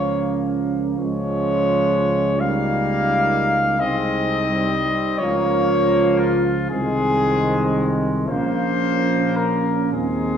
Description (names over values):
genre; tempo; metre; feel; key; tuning
classical, hymn-like piece for brass band; 34-43 BPM (dotted quarters); 6/8; rubato; Ab major; A4 = 443 Hz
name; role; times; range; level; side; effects
mellow cornet; melody; 0.0-10.4 s; F4 to F5; -22 LUFS; left 2 dB; none
dark French horn section; second line; 0.0-10.4 s; C4 to F4; -24 LUFS; right 4 dB; none
clear trombone section; accompaniment; 0.0-10.4 s; Ab3 to C4; -28 LUFS; equal; none
warm trombone; accompaniment; 0.0-10.4 s; Eb3 to Ab3; -27 LUFS; right 2 dB; none
dark tuba; bass; 0.0-10.4 s; Bb1 to Eb2; -24 LUFS; left 1 dB; none
room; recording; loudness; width
wet recital hall reverb, RT60 1.3 s; heard from further back in the room; -17 LUFS; side -8 dB against mid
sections
0.0-10.4 A section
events
none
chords
0.0 Bbm/Db; 1.0 Db; 2.4 Eb7/Db; 3.8 Ab/C; 5.2 Bbm/Db; 6.7 Ab/C; 8.3 Bbm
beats
| 0.99 2.40 | 3.80 5.20 | 6.71 8.29 | 9.94